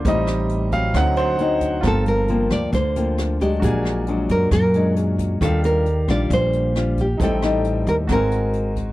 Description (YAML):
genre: bossa nova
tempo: 134 BPM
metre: 4/4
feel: straight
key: G minor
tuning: A4 = 440 Hz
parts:
  - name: clear baby grand piano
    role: accompaniment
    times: 0.0-8.9 s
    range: F#3 to A5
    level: -27 LUFS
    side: right 3 dB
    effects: none
  - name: nylon-string guitar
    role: accompaniment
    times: 0.0-8.9 s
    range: G2 to Bb4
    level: -23 LUFS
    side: left 3 dB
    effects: none
  - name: upright bass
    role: bass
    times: 0.0-8.9 s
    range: G1 to F#2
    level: -22 LUFS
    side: equal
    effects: none
  - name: jazz brush drum kit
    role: drums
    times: 0.0-8.9 s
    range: hi-hat, kick drum, rim click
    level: -27 LUFS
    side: equal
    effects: none
  - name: nylon-string guitar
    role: melody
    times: 1.9-8.7 s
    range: G4 to D5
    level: -23 LUFS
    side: right 1 dB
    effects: none
room: little or no reverb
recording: none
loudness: -17 LUFS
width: side -17 dB against mid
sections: 0.0-1.8 A section; 1.8-8.9 B section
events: grand piano solo 0.0-1.8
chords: 0.1 Am7b5; 0.9 D7b9; 1.8 Gm11; 3.6 Bbaug7; 5.4 Ebmaj9; 7.2 Am7b5; 8.1 Ab9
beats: | 0.06 0.50 0.95 1.40 | 1.84 2.29 2.74 3.18 | 3.63 4.08 4.53 4.97 | 5.42 5.87 6.31 6.76 | 7.21 7.65 8.10 8.55